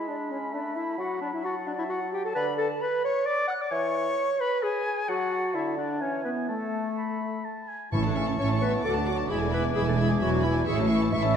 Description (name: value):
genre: quick classical-period movement for symphony orchestra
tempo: 131 BPM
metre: 3/4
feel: straight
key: A major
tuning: A4 = 440 Hz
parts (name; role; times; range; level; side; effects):
- warm clarinet; second line; 0.0-11.4 s; A3 to F#5; -29 LUFS; left 1 dB; none
- warm oboe; second line; 0.0-11.4 s; E5 to B5; -37 LUFS; left 1 dB; none
- clear bassoon; accompaniment; 0.0-11.4 s; D3 to A3; -35 LUFS; right 2 dB; none
- bright concert flute; second line; 0.1-11.4 s; A4 to F#6; -35 LUFS; left 3 dB; none
- rich chamber violin section; melody; 7.9-11.4 s; G#5 to D6; -36 LUFS; equal; none
- rich chamber violin section; second line; 7.9-11.4 s; C#5 to F#5; -37 LUFS; left 5 dB; none
- warm studio viola section; accompaniment; 7.9-11.3 s; C#4 to F#4; -35 LUFS; right 4 dB; none
- mellow French horn section; sustained chords; 7.9-11.4 s; C#3 to E4; -31 LUFS; left 4 dB; none
- warm chamber cello section; bass; 7.9-11.4 s; D2 to A2; -30 LUFS; right 1 dB; none
- warm chamber double bass section; bass; 7.9-11.4 s; E1 to D2; -29 LUFS; right 5 dB; none
- timpani; percussion; 7.9-8.6 s; A2; -32 LUFS; right 1 dB; none
room: wet scoring stage reverb, RT60 1.7 s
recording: none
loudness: -25 LUFS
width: side -8 dB against mid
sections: 0.0-7.9 A section; 7.9-11.4 B section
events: none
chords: 0.0 E7/G# (rootless); 0.5 A5; 1.0 F#m7; 2.4 D5; 3.7 E; 5.1 F#m; 5.5 Dsus2; 6.0 E; 6.5 Asus2; 7.9 A; 8.8 D; 9.3 E7; 10.7 A